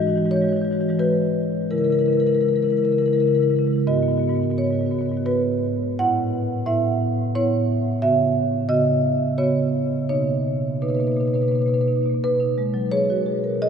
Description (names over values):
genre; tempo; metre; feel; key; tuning
classical, contemporary piece for solo marimba; 86 BPM; 3/4; uneven beats, rubato; B major from 3.9 s; A4 = 440 Hz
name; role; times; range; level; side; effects
marimba with medium mallets; solo; 0.0-13.7 s; G#2 to F#5; -19 LUFS; equal; none
room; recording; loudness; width
wet cathedral reverb, RT60 6.3 s; recorded in a church or concert hall; -19 LUFS; side -7 dB against mid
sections
0.0-12.2 A section; 12.2-13.7 B section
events
none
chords
0.0 Emaj9; 1.7 C#m6; 3.9 G#m7; 6.0 Aadd9; 8.0 C#m11; 10.1 Bmaj9; 12.2 B69